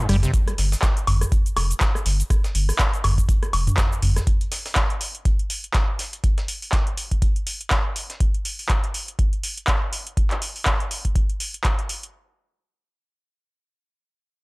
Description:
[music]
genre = acid house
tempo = 122 BPM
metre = 4/4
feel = swing 57% on 16ths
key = unclear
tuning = A4 = 439 Hz
[part]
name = round analog bass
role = bass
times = 0.1-4.2 s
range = F1 to G1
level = -21 LUFS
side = equal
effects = tube saturation, sidechain pumping
[part]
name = booming analog drum machine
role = drums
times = 0.1-12.1 s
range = handclaps, hi-hat, rim click, shaker, toms, woodblock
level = -25 LUFS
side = equal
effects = overdrive
[part]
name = breakbeat sampler-style drum kit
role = drums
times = 0.1-8.2 s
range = hi-hat, snare drum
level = -38 LUFS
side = left 1 dB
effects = high-pass filter on snare, sidechain pumping on hats, high-pass filter on hats
[part]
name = electronic kick drum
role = drums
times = 0.3-11.8 s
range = none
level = -21 LUFS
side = equal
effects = overdrive
[sound]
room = little or no reverb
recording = dry, gritty hardware recording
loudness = -20 LUFS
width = side -26 dB against mid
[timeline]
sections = 0.0-12.1 A section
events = none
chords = none

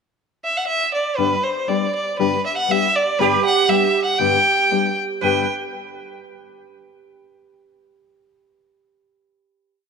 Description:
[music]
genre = mexican folk, mariachi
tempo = 118 BPM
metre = 2/4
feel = rubato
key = G major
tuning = A4 = 441 Hz
[part]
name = rich violin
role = melody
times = 0.4-5.5 s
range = B4 to G5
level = -19 LUFS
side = right 1 dB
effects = slapback echo
[part]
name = nylon-string guitar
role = accompaniment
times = 1.2-5.5 s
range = G2 to G4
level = -23 LUFS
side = left 11 dB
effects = none
[part]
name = sitar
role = second line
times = 3.2-5.5 s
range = G4 to B4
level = -22 LUFS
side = right 10 dB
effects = none
[sound]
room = moderate plate reverb, RT60 3.0 s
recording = 1960s-style stereo with parts hard left and right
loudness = -16 LUFS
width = side -5 dB against mid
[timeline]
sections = 0.2-1.2 pickup bar; 1.2-5.2 A section; 5.2-6.3 final chord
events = none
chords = 0.2 N.C.; 1.2 G

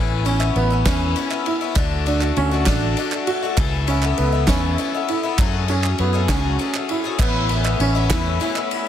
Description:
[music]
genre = indie folk with a building arrangement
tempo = 66 BPM (dotted quarters)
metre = 6/8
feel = straight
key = A major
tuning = A4 = 440 Hz
[part]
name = picked twelve-string acoustic guitar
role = accompaniment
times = 0.0-8.9 s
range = F#2 to G#4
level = -24 LUFS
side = left 9 dB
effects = none
[part]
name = fingered electric bass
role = bass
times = 0.0-8.4 s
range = A1 to F#2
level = -21 LUFS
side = equal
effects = none
[part]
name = warm upright piano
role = arpeggios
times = 0.3-8.9 s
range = B3 to F#4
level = -24 LUFS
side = right 4 dB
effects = digital delay
[part]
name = unplugged drum kit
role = drums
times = 0.3-8.9 s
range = crash cymbal, kick drum, ride cymbal, snare drum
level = -24 LUFS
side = equal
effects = none
[part]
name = group handclap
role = percussion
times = 0.4-8.7 s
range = none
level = -30 LUFS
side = right 8 dB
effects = none
[part]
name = mellow tonewheel organ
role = sustained chords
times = 7.2-8.9 s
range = A3 to B5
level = -30 LUFS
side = right 1 dB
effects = slow rotary speaker
[sound]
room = light reverb, small room ambience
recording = dense, heavily limited modern master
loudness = -17 LUFS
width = side -10 dB against mid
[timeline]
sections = 0.0-7.2 A section; 7.2-8.9 A section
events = none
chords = 0.0 Aadd9; 1.8 D; 3.6 Aadd9/C#; 5.4 F#madd9; 7.2 Aadd9

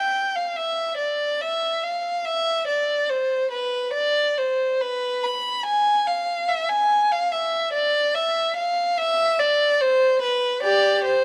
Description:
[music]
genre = classical, baroque-style suite movement for unaccompanied violin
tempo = 72 BPM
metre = 4/4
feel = rubato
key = unclear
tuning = A4 = 440 Hz
[part]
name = warm violin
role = solo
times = 0.0-11.2 s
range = G4 to B5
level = -22 LUFS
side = equal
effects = none
[sound]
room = light reverb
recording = close, detailed microphones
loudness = -22 LUFS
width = mono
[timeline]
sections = 0.0-11.2 A section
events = none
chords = none

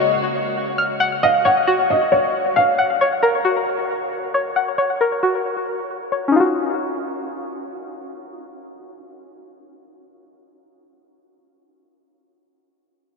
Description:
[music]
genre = hip hop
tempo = 135 BPM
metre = 4/4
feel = half-time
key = Eb minor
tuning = A4 = 442 Hz
[part]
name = felt-muted upright piano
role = melody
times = 0.0-2.8 s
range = Db5 to Gb5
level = -20 LUFS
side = equal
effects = analog chorus, low-pass filter, ping-pong delay
[part]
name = string-like resonator pluck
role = arpeggios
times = 0.0-11.0 s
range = Db4 to F6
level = -20 LUFS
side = left 2 dB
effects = chorus, low-pass filter, ping-pong delay
[sound]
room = wet huge ambient reverb, RT60 7.4 s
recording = dreamy mix soaked in reverb, low-pass filter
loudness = -17 LUFS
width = side -4 dB against mid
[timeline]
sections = 0.0-6.3 A section; 6.3-9.9 B section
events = filter sweep 0.0-6.3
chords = 0.0 Ebm9; 2.8 Gb; 6.3 Ebm9

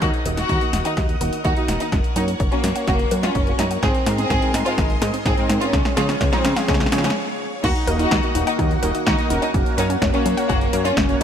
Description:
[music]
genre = italo disco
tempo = 126 BPM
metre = 4/4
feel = straight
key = Eb dorian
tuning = A4 = 445 Hz
[part]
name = clear studio violin section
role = melody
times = 0.0-11.2 s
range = Ab3 to Ab4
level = -24 LUFS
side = left 1 dB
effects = tape echo
[part]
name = string machine, full ensemble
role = sustained chords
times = 0.0-11.2 s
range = Bb3 to Eb6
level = -28 LUFS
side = equal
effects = ensemble chorus
[part]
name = wide unison pluck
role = arpeggios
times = 0.0-11.2 s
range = C4 to Gb5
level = -29 LUFS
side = left 1 dB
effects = none
[part]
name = fat analog bass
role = bass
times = 0.0-11.2 s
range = Eb1 to Db3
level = -24 LUFS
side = equal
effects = none
[part]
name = electronic kick drum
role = drums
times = 0.0-11.1 s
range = none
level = -23 LUFS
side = equal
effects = none
[part]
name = house drum kit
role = drums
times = 0.0-11.2 s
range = crash cymbal, hi-hat, snare drum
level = -26 LUFS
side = equal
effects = none
[part]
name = analog synth brass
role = stabs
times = 0.3-11.2 s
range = Ab2 to Gb5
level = -27 LUFS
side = right 2 dB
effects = chorus
[sound]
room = light reverb, digital ambience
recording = none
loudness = -17 LUFS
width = side -8 dB against mid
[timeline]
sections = 0.0-7.6 A section; 7.6-11.2 B section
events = drum fill 0.0-7.2; filter sweep on analog polysynth 0.0-7.6; break 7.2-7.6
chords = 0.0 Ebm; 1.9 Gb; 3.8 Abadd9; 5.7 Db; 7.6 Ebm; 9.5 Gb

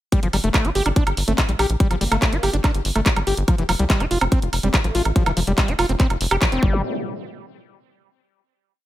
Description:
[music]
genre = psychedelic trance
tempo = 143 BPM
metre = 4/4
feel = straight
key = G minor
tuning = A4 = 440 Hz
[part]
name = overdriven acid bass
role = riff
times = 0.1-6.8 s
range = E3 to G4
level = -24 LUFS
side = left 1 dB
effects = distortion, auto-pan, cassette tape, sidechain pumping, ping-pong delay
[part]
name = electronic kick drum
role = drums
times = 0.1-6.7 s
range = none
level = -19 LUFS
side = equal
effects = studio reverb
[part]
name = garage drum kit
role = drums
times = 0.1-6.6 s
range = handclaps, hi-hat, woodblock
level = -23 LUFS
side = right 2 dB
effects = studio reverb
[part]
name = tight sequencer bass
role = bass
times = 0.2-6.8 s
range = F1 to C2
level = -23 LUFS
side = equal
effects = none
[part]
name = formant-sweep wobble bass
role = second line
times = 1.3-5.3 s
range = A3 to C4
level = -35 LUFS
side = right 1 dB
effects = none
[part]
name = zap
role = sound effects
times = 6.7-6.8 s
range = none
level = -28 LUFS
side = equal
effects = none
[sound]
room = digital ambience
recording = none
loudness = -17 LUFS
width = side -14 dB against mid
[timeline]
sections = 0.1-6.8 drop; 6.8-8.5 final hit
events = drop 0.1-6.8; band accent 6.4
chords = 0.1 G5; 3.5 F5; 6.6 N.C.

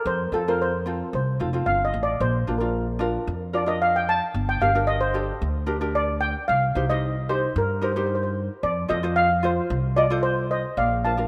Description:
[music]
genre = calypso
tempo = 112 BPM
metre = 4/4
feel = straight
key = Bb major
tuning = A4 = 439 Hz
[part]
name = steel pan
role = melody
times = 0.1-11.3 s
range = A4 to A5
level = -26 LUFS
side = equal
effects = none
[part]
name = upright bass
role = bass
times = 0.1-11.3 s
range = F1 to G2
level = -29 LUFS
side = equal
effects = none
[part]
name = ukulele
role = accompaniment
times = 0.3-11.3 s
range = C4 to Eb5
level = -30 LUFS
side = equal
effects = none
[sound]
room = moderate plate reverb, RT60 2.7 s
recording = rough home demo mix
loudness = -24 LUFS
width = mono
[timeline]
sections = 0.0-10.8 A section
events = steel pan solo 0.0-10.8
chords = 0.1 F; 2.2 Bb; 4.3 Gmadd9; 6.5 Cm; 8.6 F; 10.8 Bb

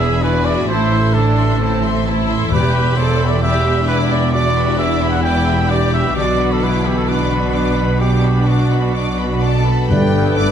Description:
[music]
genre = cinematic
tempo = 131 BPM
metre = 4/4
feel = straight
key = unclear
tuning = A4 = 441 Hz
[part]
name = rich symphonic violin section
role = melody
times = 0.0-10.5 s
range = G5 to D6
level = -27 LUFS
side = left 3 dB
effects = none
[part]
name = clear symphonic violin section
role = second line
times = 0.0-10.5 s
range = D4 to E5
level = -26 LUFS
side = left 2 dB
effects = none
[part]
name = rich symphonic viola section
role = accompaniment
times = 0.0-10.5 s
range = B3 to A4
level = -23 LUFS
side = right 1 dB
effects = none
[part]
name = concert harp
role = arpeggios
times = 0.0-10.5 s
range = G2 to B4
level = -24 LUFS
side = left 12 dB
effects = none
[part]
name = clear trumpet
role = stabs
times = 0.0-10.5 s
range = F#4 to G5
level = -22 LUFS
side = right 1 dB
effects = none
[part]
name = clear symphonic cello section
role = bass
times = 0.0-10.5 s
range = E2 to B2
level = -20 LUFS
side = right 2 dB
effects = none
[part]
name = dark studio double bass section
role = bass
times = 0.0-10.5 s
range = E1 to B1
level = -19 LUFS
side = right 2 dB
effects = none
[part]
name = timpani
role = percussion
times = 2.5-3.2, 9.9-10.5 s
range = E2 to G2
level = -21 LUFS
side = left 2 dB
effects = none
[part]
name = mellow clarinet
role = second line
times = 9.9-10.5 s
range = A4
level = -24 LUFS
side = left 7 dB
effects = none
[part]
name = silver concert flute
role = second line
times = 9.9-10.5 s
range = B4 to D5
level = -25 LUFS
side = right 1 dB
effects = none
[part]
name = warm oboe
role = second line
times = 9.9-10.5 s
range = B4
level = -26 LUFS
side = equal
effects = none
[part]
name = clear trombone section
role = sustained chords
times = 9.9-10.5 s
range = D3 to A3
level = -28 LUFS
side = right 3 dB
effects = none
[part]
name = dark French horn section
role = sustained chords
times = 9.9-10.5 s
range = D4 to G4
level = -23 LUFS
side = left 5 dB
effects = none
[sound]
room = moderate scoring stage reverb, RT60 1.6 s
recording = none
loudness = -13 LUFS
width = side -8 dB against mid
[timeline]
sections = 0.0-9.9 A section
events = none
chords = 0.0 E7; 0.7 Am; 2.5 Em7; 6.2 Bm; 9.9 Gadd9

